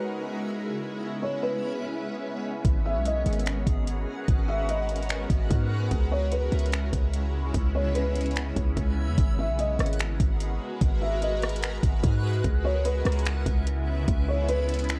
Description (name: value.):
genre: hip hop, atmospheric cloud-rap.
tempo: 147 BPM.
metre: 4/4.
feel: half-time.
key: G# minor.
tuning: A4 = 441 Hz.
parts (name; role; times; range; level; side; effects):
felt-muted upright piano; melody; 0.0-14.9 s; B4 to E5; -34 LUFS; equal; tape echo.
shimmering ambient pad; sustained chords; 0.0-15.0 s; C#3 to B4; -36 LUFS; equal; chorus, built-in reverb, phaser, sidechain pumping.
backwards swelling texture; texture; 0.0-15.0 s; B3 to F#5; -43 LUFS; equal; built-in reverb.
warm 808-style bass; bass; 2.6-15.0 s; G#1 to G#2; -29 LUFS; equal; none.
smooth R&B drum kit; drums; 2.6-15.0 s; finger snaps, hi-hat, kick drum, rim click; -29 LUFS; equal; none.
room: little or no reverb.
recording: worn, warbling old tape, cassette tape, warbly pitch drift.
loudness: -27 LUFS.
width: mono.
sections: 0.0-9.2 A section; 9.2-15.0 B section.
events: none.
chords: 0.0 C#m7; 2.6 G#m7; 5.9 C#m7; 9.2 G#m7; 12.4 C#m7.